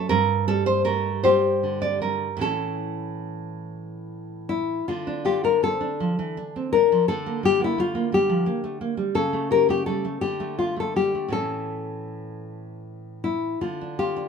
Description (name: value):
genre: romantic duo for nylon-string guitar and classical guitar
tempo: 48-59 BPM (dotted quarters)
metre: 6/8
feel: rubato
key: D minor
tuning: A4 = 440 Hz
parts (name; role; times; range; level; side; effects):
- nylon-string guitar; melody; 0.0-14.3 s; E4 to Bb4; -23 LUFS; left 6 dB; none
- nylon-string guitar; accompaniment; 0.0-14.3 s; G2 to D5; -25 LUFS; right 3 dB; none
room: moderate studio reverb, RT60 0.6 s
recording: minimal, uncompressed stereo recording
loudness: -21 LUFS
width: side -6 dB against mid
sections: 0.0-4.9 A section; 4.9-14.3 B section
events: none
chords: 0.1 G5; 2.4 A; 4.9 Dm; 7.1 Gm/D; 9.1 A7/C#; 10.2 Dm; 11.3 A; 13.6 Dm